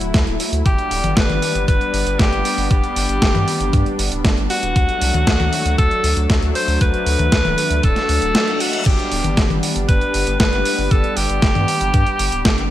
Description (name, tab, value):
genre	italo disco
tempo	117 BPM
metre	4/4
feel	straight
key	G major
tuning	A4 = 440 Hz
part	bright alto saxophone	melody	0.0-12.7 s	F#4 to C5	-21 LUFS	equal	ping-pong delay
part	warm analog pad	sustained chords	0.0-12.7 s	F#3 to E4	-24 LUFS	left 2 dB	lush chorus
part	round analog bass	bass	0.0-12.7 s	D1 to G2	-21 LUFS	equal	none
part	dusty soul sampler-style drum kit	drums	0.0-12.7 s	crash cymbal, hi-hat, snare drum, toms	-21 LUFS	equal	overdrive, studio reverb
part	electronic kick drum	drums	0.1-12.6 s	none	-18 LUFS	equal	overdrive, studio reverb
part	reverse cymbal	sound effects	8.3-8.9 s	none	-28 LUFS	left 2 dB	none
room	light reverb, digital ambience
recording	bright 1980s-style digital production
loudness	-15 LUFS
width	side -13 dB against mid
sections	0.0-12.7 A section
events	reverse cymbal 8.3-8.9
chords	0.0 D; 0.7 G; 4.8 D; 8.9 G